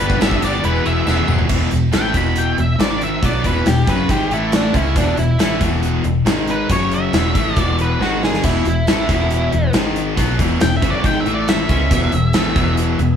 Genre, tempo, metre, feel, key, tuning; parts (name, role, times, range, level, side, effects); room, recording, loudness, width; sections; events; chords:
classic rock; 138 BPM; 4/4; straight; E major; A4 = 438 Hz
octave-fuzz lead guitar; melody; 0.0-12.7 s; D4 to B5; -22 LUFS; right 1 dB; distortion
tonewheel organ; sustained chords; 0.0-1.5, 8.5-13.2 s; G3 to E5; -31 LUFS; right 1 dB
crunchy overdriven guitar; riff; 0.0-13.2 s; E2 to E4; -21 LUFS; left 8 dB
distorted electric guitar; riff; 0.0-13.2 s; E2 to G#4; -23 LUFS; right 8 dB; overdrive
fingered electric bass; bass; 0.0-13.2 s; E1 to C#2; -21 LUFS; equal
gated 80s drum kit; drums; 0.1-13.1 s; crash cymbal, hi-hat, kick drum, snare drum, splash cymbal, toms; -19 LUFS; equal
tambourine; percussion; 0.1-1.4 s; -38 LUFS; left 6 dB
moderate stone room reverb, RT60 1.2 s; band playing live in one room, studio ambience; -14 LUFS; side -8 dB against mid
0.0-1.5 A section; 1.5-13.2 B section
drum fill 1.1-1.5, 8.0-8.4; lead electric guitar solo 1.5-13.2
0.0 G; 0.6 E; 1.5 E5; 2.8 G#5; 3.2 E; 4.3 A5; 4.7 E; 6.3 G#5; 6.7 F#5; 7.1 E5; 8.0 G#5; 8.4 E; 9.7 G#5; 10.2 E; 11.3 A5; 11.7 E